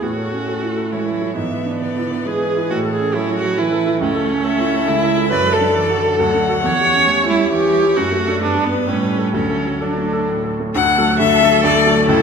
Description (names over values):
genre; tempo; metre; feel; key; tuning
quick classical-period movement for piano quartet; 135 BPM; 3/4; rubato; A major, D major from 5.3 s; A4 = 443 Hz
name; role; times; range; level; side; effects
rich violin; melody; 0.0-12.2 s; A4 to F#5; -21 LUFS; left 7 dB; none
clear cello; second line; 0.0-12.2 s; D3 to A4; -24 LUFS; right 6 dB; none
clear baby grand piano; accompaniment; 0.0-12.2 s; C#2 to B4; -20 LUFS; equal; none
rich viola; accompaniment; 0.0-12.2 s; A3 to C#5; -18 LUFS; right 2 dB; none
room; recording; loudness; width
wet recital hall reverb, RT60 1.7 s; recorded in a church or concert hall; -15 LUFS; side -6 dB against mid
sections
0.0-10.7 A section; 10.7-12.2 B section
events
none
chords
0.0 A; 1.4 E7/G#; 2.7 A; 4.0 A/C#; 5.3 D/F#; 6.2 D; 6.6 C#dim/E; 8.0 D/F#; 8.4 G; 8.9 A7; 9.3 D